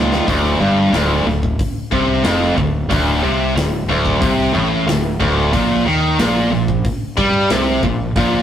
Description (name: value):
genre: hard rock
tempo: 91 BPM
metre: 4/4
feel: straight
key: D phrygian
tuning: A4 = 441 Hz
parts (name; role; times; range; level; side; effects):
- high-gain distorted guitar; riff; 0.0-8.4 s; D2 to G3; -18 LUFS; left 3 dB; distortion
- tight distorted guitar; riff; 0.0-8.4 s; D2 to G3; -19 LUFS; right 4 dB; distortion
- fuzz fingered electric bass; bass; 0.0-8.4 s; D1 to G2; -21 LUFS; equal; overdrive
- big rock drum kit; drums; 0.1-8.3 s; hi-hat, kick drum, snare drum; -22 LUFS; left 1 dB; none
room: moderate stone room reverb, RT60 1.3 s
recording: rough rehearsal-room recording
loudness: -14 LUFS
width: side -10 dB against mid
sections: 0.3-8.4 A section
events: drum fill 0.0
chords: 0.3 Dm; 5.5 Gmadd11